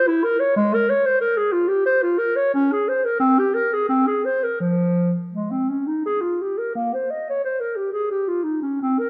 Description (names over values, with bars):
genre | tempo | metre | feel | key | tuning
classical, baroque-style fantasia for unaccompanied clarinet | 82-93 BPM | 3/4 | rubato | unclear | A4 = 440 Hz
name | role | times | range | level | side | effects
dark clarinet | solo | 0.0-9.1 s | F3 to Eb5 | -21 LUFS | equal | none
room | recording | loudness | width
moderate recital hall reverb, RT60 1.7 s | none | -21 LUFS | mono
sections
0.0-6.7 A section; 6.7-9.1 A section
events
none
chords
none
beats
| 0.56 1.21 1.86 | 2.54 3.22 3.90 | 4.61 5.33 6.04 | 6.75 7.42 8.09 | 8.79